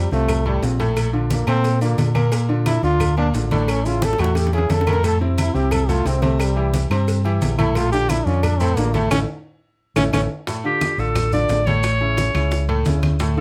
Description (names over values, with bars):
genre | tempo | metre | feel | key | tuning
latin, salsa | 177 BPM | 4/4 | straight | unclear | A4 = 443 Hz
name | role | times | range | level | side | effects
bright trombone | melody | 0.0-10.2 s | G3 to Bb4 | -25 LUFS | equal | none
bright concert grand piano | accompaniment | 0.0-13.4 s | A2 to C5 | -26 LUFS | equal | none
fingered electric bass | bass | 0.0-13.4 s | A1 to Bb2 | -22 LUFS | equal | none
congas | percussion | 0.1-13.4 s | none | -28 LUFS | equal | none
maracas | percussion | 0.1-13.4 s | none | -40 LUFS | equal | none
agogo bells and timbales | percussion | 0.3-13.4 s | none | -35 LUFS | equal | none
claves | percussion | 0.3-13.2 s | none | -34 LUFS | equal | none
cowbell and bongos | percussion | 0.3-13.4 s | none | -33 LUFS | equal | none
bright clarinet | melody | 10.7-13.4 s | G4 to D5 | -24 LUFS | equal | slapback echo
room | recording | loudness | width
light reverb | close, detailed microphones | -19 LUFS | mono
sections
0.0-10.5 A section; 10.5-13.4 B section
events
trombone solo 0.0-10.5; drum fill 4.0-5.0, 10.0-10.5; band accent 9.1-10.5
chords
0.0 F; 1.0 Bbmaj7; 3.7 A; 5.0 Fmaj7; 6.4 C; 7.8 Bbmaj7; 9.1 A; 10.5 Dm; 11.8 A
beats
0.28 0.62 | 0.96 1.30 1.64 1.98 | 2.32 2.66 3.00 3.34 | 3.68 4.02 4.36 4.70 | 5.04 5.38 5.72 6.06 | 6.40 6.74 7.08 7.42 | 7.76 8.10 8.44 8.78 | 9.12 9.46 9.80 10.14 | 10.48 10.82 11.16 11.50 | 11.84 12.18 12.52 12.86 | 13.20